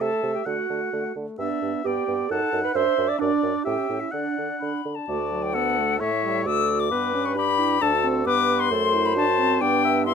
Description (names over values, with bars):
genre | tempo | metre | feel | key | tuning
quick classical-period movement for wind quintet | 132 BPM | 2/4 | straight | D major from 3.2 s | A4 = 440 Hz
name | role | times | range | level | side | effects
silver concert flute | melody | 0.0-10.1 s | D5 to E6 | -26 LUFS | left 9 dB | none
warm oboe | second line | 0.0-10.1 s | G4 to F#5 | -28 LUFS | left 4 dB | none
dark clarinet | accompaniment | 0.0-10.1 s | D4 to D5 | -27 LUFS | right 13 dB | none
warm French horn | accompaniment | 0.0-10.1 s | F#3 to D#4 | -30 LUFS | equal | none
dark bassoon | bass | 0.0-10.1 s | D2 to D3 | -29 LUFS | right 2 dB | none
room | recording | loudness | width
light reverb | close, detailed microphones | -21 LUFS | side -6 dB against mid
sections
0.0-5.1 A section; 5.1-10.1 B section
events
none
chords
0.0 Am/C; 0.5 D; 1.4 G; 2.3 B7/F#; 2.8 D/F#; 3.7 A7; 4.1 D; 6.0 A7; 6.5 D; 6.9 G; 7.8 D7; 8.3 G; 8.7 D7/F# (rootless); 9.6 G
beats
0.00 | 0.46 0.92 | 1.39 1.85 | 2.31 2.76 | 3.20 3.66 | 4.13 4.61 | 5.09 5.55 | 6.01 6.46 | 6.92 7.37 | 7.82 8.27 | 8.71 9.16 | 9.61 10.07